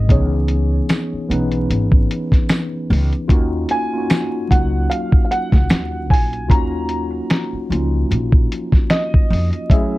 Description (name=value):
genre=lo-fi hip hop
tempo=75 BPM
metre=4/4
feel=swing 57% on 16ths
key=Eb minor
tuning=A4 = 440 Hz
part: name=felt-muted upright piano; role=melody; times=0.0-10.0 s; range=Db5 to Bb5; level=-25 LUFS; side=right 1 dB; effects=low-pass filter, analog delay, plate reverb
part: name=mellow tine electric piano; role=accompaniment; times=0.0-10.0 s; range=Fb3 to Cb5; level=-22 LUFS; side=left 1 dB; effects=medium stereo tremolo, low-pass filter
part: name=upright bass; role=bass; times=0.0-9.5 s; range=Ab1 to F2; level=-19 LUFS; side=equal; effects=none
part: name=lo-fi sampler-style drum kit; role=drums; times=0.1-9.9 s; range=finger snaps, hi-hat, kick drum, snare drum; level=-14 LUFS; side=equal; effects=vintage 12-bit sampler grit
part: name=tambourine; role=percussion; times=0.9-5.9 s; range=none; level=-39 LUFS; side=right 5 dB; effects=none
room=light reverb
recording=dark, warm production, vinyl crackle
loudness=-15 LUFS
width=side -18 dB against mid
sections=0.0-10.0 A section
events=none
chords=0.1 Dbm9; 3.3 Ebm9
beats=| 0.10 0.90 1.70 2.50 | 3.30 4.10 4.90 5.70 | 6.50 7.30 8.10 8.90 | 9.70